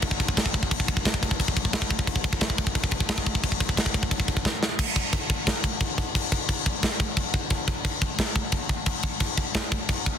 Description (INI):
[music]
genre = metal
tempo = 176 BPM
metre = 4/4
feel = straight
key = none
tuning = none
[part]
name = tight metal drum kit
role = drums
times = 0.0-10.1 s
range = crash cymbal, kick drum, snare drum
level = -23 LUFS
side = equal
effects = none
[sound]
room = little or no reverb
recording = dense, heavily limited modern master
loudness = -23 LUFS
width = side -8 dB against mid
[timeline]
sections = 0.0-4.8 A section; 4.8-10.2 B section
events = drum fill 4.5-4.8; half time 4.8-10.2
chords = none